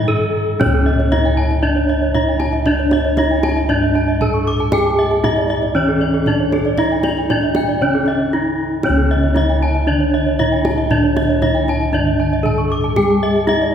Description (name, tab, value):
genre	Balinese gamelan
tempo	116 BPM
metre	4/4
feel	straight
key	C# pelog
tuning	A4 = 439 Hz
part	gamelan-type bronze metallophone	melody	0.0-13.7 s	C#4 to A4-40c	-18 LUFS	right 1 dB	none
part	gamelan-type bronze metallophone	accompaniment	0.0-0.6, 8.8-13.7 s	C#3 to G#3-45c	-24 LUFS	left 2 dB	none
part	gamelan-type bossed gongs	bass	0.0-13.7 s	C#2 to G#4-45c	-19 LUFS	equal	none
part	gamelan-type bronze metallophone	arpeggios	0.6-13.6 s	A4-40c to D6	-23 LUFS	left 2 dB	none
part	kendang	percussion	0.6-13.7 s	none	-24 LUFS	right 1 dB	none
part	gamelan-type bronze metallophone	arpeggios	0.7-13.7 s	A4-40c to C#6	-24 LUFS	right 3 dB	none
room	wet concert hall reverb, RT60 2.4 s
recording	heard from further back in the room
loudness	-14 LUFS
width	side -8 dB against mid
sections	0.6-13.7 A section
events	break 0.0-0.6, 8.1-8.8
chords	none